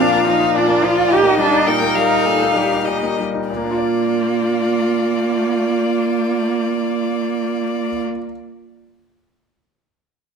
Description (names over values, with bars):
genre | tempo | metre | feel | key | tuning
quick classical-period movement for piano quartet | 94-112 BPM | 4/4 | straight | Bb major | A4 = 440 Hz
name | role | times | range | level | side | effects
clear violin | melody | 0.0-8.0 s | D5 to G5 | -22 LUFS | left 8 dB | none
warm cello | second line | 0.0-8.0 s | Bb3 to G4 | -19 LUFS | right 5 dB | none
bright grand piano | accompaniment | 0.0-8.3 s | Bb2 to D5 | -22 LUFS | left 4 dB | none
warm viola | accompaniment | 0.0-8.0 s | Eb4 to Bb4 | -22 LUFS | right 2 dB | none
room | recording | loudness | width
moderate large studio reverb, RT60 1.3 s | minimal, uncompressed stereo recording | -15 LUFS | side -6 dB against mid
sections
0.0-3.5 A section; 3.5-8.5 B section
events
slowing down 0.0-3.5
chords
0.0 Bb; 1.1 Eb/Bb; 3.5 Bb